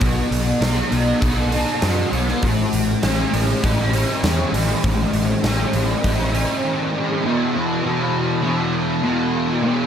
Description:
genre	rock, shoegaze and dream pop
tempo	100 BPM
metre	4/4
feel	straight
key	unclear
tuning	A4 = 440 Hz
part	fuzz guitar	riff	0.0-9.9 s	E2 to A4	-19 LUFS	equal	distortion, ensemble chorus
part	fuzz picked electric bass	bass	0.0-6.4 s	A1 to F#2	-22 LUFS	equal	overdrive
part	big rock drum kit	drums	0.0-6.5 s	hi-hat, kick drum, snare drum	-24 LUFS	equal	none
room	light reverb, studio ambience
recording	none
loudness	-17 LUFS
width	side -8 dB against mid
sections	0.0-7.2 A section; 7.2-9.9 B section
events	none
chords	0.0 B7; 2.4 Amaj7; 7.2 E5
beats	| 0.02 0.62 1.22 1.83 | 2.43 3.03 3.63 4.24 | 4.84 5.44 6.04 6.64 | 7.24 7.84 8.44 9.04 | 9.63

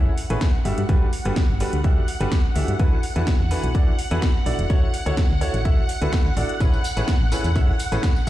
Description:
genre	piano house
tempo	126 BPM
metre	4/4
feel	straight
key	A major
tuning	A4 = 440 Hz
part	string machine, violins	sustained chords	0.0-8.3 s	F#5	-31 LUFS	right 1 dB	ensemble chorus, sidechain pumping
part	clear upright piano	riff	0.0-8.3 s	A2 to E5	-27 LUFS	equal	sidechain pumping, low-pass filter, dub echo
part	solid FM bass	bass	0.0-8.3 s	E1 to G2	-23 LUFS	equal	sidechain pumping
part	house drum kit	drums	0.2-8.3 s	hi-hat, snare drum, tambourine	-32 LUFS	equal	studio reverb
part	electronic kick drum	drums	0.4-8.1 s	none	-20 LUFS	equal	studio reverb
room	little or no reverb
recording	played on a big sound system in a bare room, large studio reverb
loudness	-18 LUFS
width	side -14 dB against mid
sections	0.0-8.3 A section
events	none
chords	0.0 Amaj9; 0.7 Gmaj9; 2.8 E9sus4; 4.7 Dmaj9; 6.6 Amaj9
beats	0.41 | 0.89 1.37 1.84 2.32 | 2.79 3.27 3.75 4.22 | 4.70 5.18 5.65 6.13 | 6.61 7.08 7.56 8.03

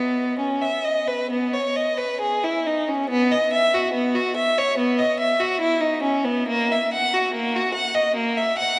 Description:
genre	classical, baroque-style suite movement for unaccompanied violin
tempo	66-74 BPM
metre	4/4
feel	rubato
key	B major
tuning	A4 = 440 Hz
part	clear violin	solo	0.0-8.8 s	A#3 to F#5	-22 LUFS	equal	none
room	wet cathedral reverb, RT60 6.4 s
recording	vinyl crackle, nothing above 10.8 kHz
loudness	-22 LUFS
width	mono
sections	0.0-3.1 A section; 3.1-8.8 B section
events	none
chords	none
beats	0.40 1.31 2.20 | 3.09 3.94 4.78 5.61 | 6.48 7.34 8.17

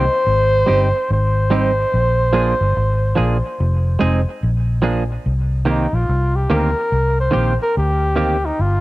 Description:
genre	roots reggae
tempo	72 BPM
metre	4/4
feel	swing 61% on 16ths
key	C minor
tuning	A4 = 440 Hz
part	warm flugelhorn	melody	0.0-8.8 s	Eb4 to C5	-19 LUFS	equal	cassette tape, dub echo
part	semi-hollow electric guitar	accompaniment	0.0-8.4 s	Eb3 to Ab4	-21 LUFS	right 3 dB	wide subtle chorus, cassette tape, dub echo
part	vintage muted fingered electric bass	bass	0.0-8.8 s	F1 to D2	-17 LUFS	equal	none
room	light reverb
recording	home recording on cassette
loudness	-15 LUFS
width	side -18 dB against mid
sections	0.0-5.2 A section; 5.2-8.8 B section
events	flugelhorn solo 5.2-8.8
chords	0.3 Abmaj7; 1.9 Bb7; 3.6 Fm7; 4.4 Bb7; 5.2 Cm7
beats	0.25 1.09 | 1.92 2.75 3.58 4.41 | 5.25 6.08 6.91 7.74 | 8.57

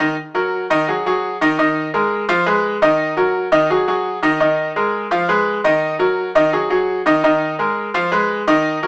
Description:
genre	latin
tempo	170 BPM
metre	4/4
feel	straight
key	unclear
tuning	A4 = 437 Hz
part	bright grand piano	solo	0.0-8.9 s	Eb3 to F5	-14 LUFS	equal	none
room	moderate studio reverb, RT60 0.8 s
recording	band playing live in one room, small speaker sound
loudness	-14 LUFS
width	side -36 dB against mid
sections	0.2-8.9 A section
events	none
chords	0.2 Ebm; 0.9 Ab5; 1.6 Bb7sus4; 2.3 Abm6; 3.0 Ebm; 3.7 Ab5; 4.4 Bb7sus4; 5.1 Abm6; 5.8 Ebm; 6.5 Ab5; 7.2 Bb7sus4; 7.9 Abm6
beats	| 0.17 0.53 0.88 1.23 | 1.58 1.94 2.29 2.64 | 3.00 3.35 3.70 4.05 | 4.41 4.76 5.11 5.47 | 5.82 6.17 6.53 6.88 | 7.23 7.59 7.94 8.29 | 8.65

